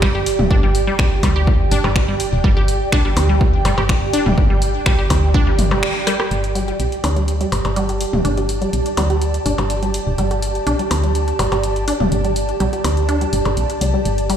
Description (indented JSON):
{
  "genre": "minimal techno",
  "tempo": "124 BPM",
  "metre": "4/4",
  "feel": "straight",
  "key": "unclear",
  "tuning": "A4 = 440 Hz",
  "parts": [
    { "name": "resonant blip pluck", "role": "riff", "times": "0.0-14.3 s", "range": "D3 to G4", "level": "-23 LUFS", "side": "left 1 dB", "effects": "chorus, sidechain pumping, ping-pong delay" },
    { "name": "woody FM bass", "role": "bass", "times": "0.0-14.4 s", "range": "D1 to D2", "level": "-19 LUFS", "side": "equal", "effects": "sidechain pumping" },
    { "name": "electronic kick drum", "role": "drums", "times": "0.0-5.4 s", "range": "none", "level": "-17 LUFS", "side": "equal", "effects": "none" },
    { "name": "punchy analog drum machine", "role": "drums", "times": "0.0-14.4 s", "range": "finger snaps, hi-hat, rim click", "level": "-26 LUFS", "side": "equal", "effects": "none" },
    { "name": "ethereal airy pad", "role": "texture", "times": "0.0-14.4 s", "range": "G4 to A5", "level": "-22 LUFS", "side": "right 3 dB", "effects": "ensemble chorus, built-in reverb, sidechain pumping" },
    { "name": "electronic toms and percussion blips", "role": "percussion", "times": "0.4-13.5 s", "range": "none", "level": "-25 LUFS", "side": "left 2 dB", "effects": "tape echo" }
  ],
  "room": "moderate lush hall reverb, RT60 2.2 s",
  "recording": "played on a big sound system in a bare room, large studio reverb",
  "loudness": "-15 LUFS",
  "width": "side -9 dB against mid",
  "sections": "0.0-6.3 A section; 6.3-14.4 B section",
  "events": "break 5.8-6.3; band accent 5.8; drum fill 6.1; filter sweep on synth pluck 6.3-14.4",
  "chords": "0.0 G5",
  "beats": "0.02 | 0.51 0.99 1.47 1.96 | 2.44 2.92 3.41 3.89 | 4.38 4.86 5.34 5.83 | 6.31 6.80 7.28 7.76 | 8.25 8.73 9.21 9.70 | 10.18 10.67 11.15 11.63 | 12.12 12.60 13.09 13.57 | 14.05"
}